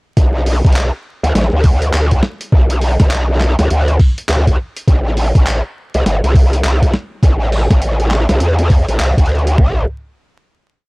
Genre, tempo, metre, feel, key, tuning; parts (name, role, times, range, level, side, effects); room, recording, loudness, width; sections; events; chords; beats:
glitch hop; 102 BPM; 4/4; swing 62% on 16ths; A minor; A4 = 443 Hz
growl bass; bass; 0.2-9.9 s; G1 to E2; -13 LUFS; equal; chorus
boom bap sampler-style drum kit; drums; 0.2-9.8 s; kick drum, toms; -10 LUFS; equal
boom bap sampler-style drum kit; drums; 0.2-9.6 s; handclaps, hi-hat, snare drum; -21 LUFS; equal
little or no reverb; dry, gritty hardware recording, transformer saturation, vinyl crackle; -11 LUFS; side -27 dB against mid
0.2-9.6 drop; 9.6-10.9 final note
drop 0.2-9.6
| 0.17 0.76 1.35 1.94 | 2.53 3.11 3.70 4.29 | 4.88 5.47 6.05 6.64 | 7.23 7.82 8.41 9.00 | 9.59